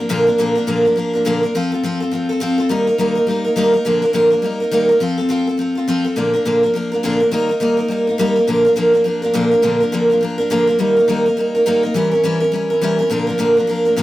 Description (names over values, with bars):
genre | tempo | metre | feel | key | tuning
rock | 207 BPM | 4/4 | swing 62% on 8ths | Bb major | A4 = 441 Hz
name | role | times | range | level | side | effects
picked steel-string acoustic guitar | solo | 0.0-14.0 s | Bb2 to Bb4 | -14 LUFS | equal | none
room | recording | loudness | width
light reverb | rough rehearsal-room recording | -14 LUFS | side -15 dB against mid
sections
0.0-6.2 A section; 6.2-14.0 B section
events
none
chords
0.0 Bb; 1.5 F; 2.7 Eb; 3.9 Bb; 4.4 Eb; 5.0 F; 6.2 Bb; 7.3 Eb; 8.5 Bb; 10.8 Eb; 12.0 Edim7; 13.1 Bb